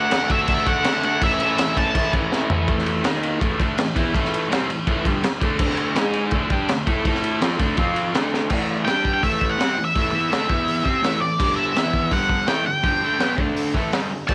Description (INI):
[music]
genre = garage rock duo or trio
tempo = 166 BPM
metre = 4/4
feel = straight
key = unclear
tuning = A4 = 437 Hz
[part]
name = octave-fuzz lead guitar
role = melody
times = 0.0-2.1, 8.8-14.3 s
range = D5 to A5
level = -24 LUFS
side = equal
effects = distortion, tape echo
[part]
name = crunchy overdriven guitar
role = riff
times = 0.0-14.3 s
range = G2 to A4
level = -25 LUFS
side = equal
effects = none
[part]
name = crunchy breakbeat drum kit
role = drums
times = 0.1-14.3 s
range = crash cymbal, hi-hat, kick drum, ride cymbal, snare drum, toms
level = -25 LUFS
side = equal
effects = none
[sound]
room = light reverb, small room reverb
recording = none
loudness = -21 LUFS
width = mono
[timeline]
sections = 0.0-2.7 A section; 2.7-8.5 B section; 8.5-14.3 C section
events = drum fill 2.3-2.7, 8.3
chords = 0.0 D; 1.2 A; 2.7 A5; 3.0 D#5; 3.4 A5; 5.6 D5; 6.0 G#5; 6.3 D5; 7.0 A5; 7.4 D5; 7.8 F5; 8.1 D5; 8.5 A5; 8.9 G5; 9.2 A5; 10.5 E5; 10.8 A5; 11.4 G5; 11.8 E5; 12.1 G5; 13.4 D5; 13.7 G5